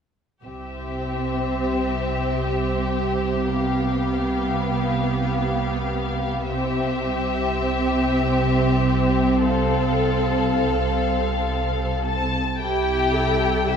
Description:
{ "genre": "classical, slow romantic movement for string orchestra", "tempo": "52-63 BPM", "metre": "3/4", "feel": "rubato", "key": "C major", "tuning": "A4 = 436 Hz", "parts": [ { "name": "warm symphonic violin section", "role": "second line", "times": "0.4-13.8 s", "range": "E4 to A4", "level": "-27 LUFS", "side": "left 3 dB", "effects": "none" }, { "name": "rich symphonic double bass section", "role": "bass", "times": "0.4-13.8 s", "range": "C2", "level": "-27 LUFS", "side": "right 3 dB", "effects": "none" }, { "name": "rich symphonic violin section", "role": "melody", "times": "0.5-13.8 s", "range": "E5 to A5", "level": "-28 LUFS", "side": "left 5 dB", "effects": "none" }, { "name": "rich symphonic viola section", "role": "accompaniment", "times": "0.5-13.8 s", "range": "B3 to A4", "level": "-26 LUFS", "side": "equal", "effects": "none" }, { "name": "warm symphonic cello section", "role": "bass", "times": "0.5-13.8 s", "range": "C3", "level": "-26 LUFS", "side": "right 2 dB", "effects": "none" } ], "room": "wet concert hall reverb, RT60 2.5 s", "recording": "minimal, uncompressed stereo recording", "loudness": "-20 LUFS", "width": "side -7 dB against mid", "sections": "0.4-12.6 A section; 12.6-13.8 B section", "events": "none", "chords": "0.4 C; 3.5 G7/C; 6.5 C" }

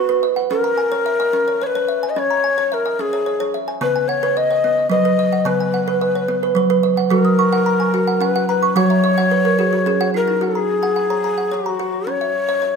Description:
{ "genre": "world meditative, meditative tuned percussion", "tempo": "109 BPM", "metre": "3/4", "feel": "straight", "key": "unclear", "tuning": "A4 = 442 Hz", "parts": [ { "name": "breathy mellow Native American-style cedar flute", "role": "melody", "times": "0.0-12.8 s", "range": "F#4 to D#5", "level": "-18 LUFS", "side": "left 4 dB", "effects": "none" }, { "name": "kalimba", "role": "arpeggios", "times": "0.0-12.8 s", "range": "C#3 to D#6", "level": "-18 LUFS", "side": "right 3 dB", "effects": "tape echo" } ], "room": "wet echo chamber reverb, RT60 1.8 s", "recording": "none", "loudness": "-15 LUFS", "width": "side -5 dB against mid", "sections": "0.0-10.4 A section; 10.4-12.8 B section", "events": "kalimba fill 8.8-10.4", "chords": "0.5 C#m; 3.8 B/C#; 7.1 F#; 12.1 C#m" }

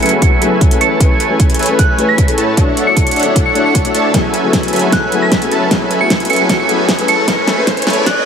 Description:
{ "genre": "future bass", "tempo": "153 BPM", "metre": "4/4", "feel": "half-time", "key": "F# minor", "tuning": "A4 = 438 Hz", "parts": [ { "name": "soft synth bell", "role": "melody", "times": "0.0-8.2 s", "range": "F#6 to C#7", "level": "-18 LUFS", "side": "right 3 dB", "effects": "chorus, phaser, sidechain pumping, low-pass filter, ping-pong delay" }, { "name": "felt-muted upright piano", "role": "accompaniment", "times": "0.0-8.1 s", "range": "F#3 to C#5", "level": "-19 LUFS", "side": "left 5 dB", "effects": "sidechain pumping" }, { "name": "shimmering ambient pad", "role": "sustained chords", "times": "0.0-8.3 s", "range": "D3 to G#5", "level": "-25 LUFS", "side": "equal", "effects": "none" }, { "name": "supersaw chords", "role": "riff", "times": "0.0-8.3 s", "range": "F#3 to A5", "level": "-16 LUFS", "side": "equal", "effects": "vintage 12-bit sampler grit, sidechain pumping, low-pass filter" }, { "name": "saturated sub bass", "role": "bass", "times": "0.0-8.3 s", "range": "D1 to A2", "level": "-29 LUFS", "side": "equal", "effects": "none" }, { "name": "pop drum kit", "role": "drums", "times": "0.0-8.1 s", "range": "hi-hat, snare drum", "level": "-17 LUFS", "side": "equal", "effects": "overdrive" }, { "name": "electronic kick drum", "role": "drums", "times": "0.2-8.1 s", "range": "none", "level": "-14 LUFS", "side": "equal", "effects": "none" }, { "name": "riser", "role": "sound effects", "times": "5.5-8.3 s", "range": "none", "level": "-23 LUFS", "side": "equal", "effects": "none" } ], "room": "light reverb", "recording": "high-pass filter", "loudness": "-10 LUFS", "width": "side -7 dB against mid", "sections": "0.0-8.3 A section", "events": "build-up 0.0-8.3; filter sweep on supersaw synth 0.0-8.3; filter sweep 0.0-8.3; drum fill 4.1-8.3; riser 5.5-8.3", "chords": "0.0 F#m11; 0.8 Amaj9; 2.6 Dmaj9; 4.1 F#m11; 7.1 Amaj9" }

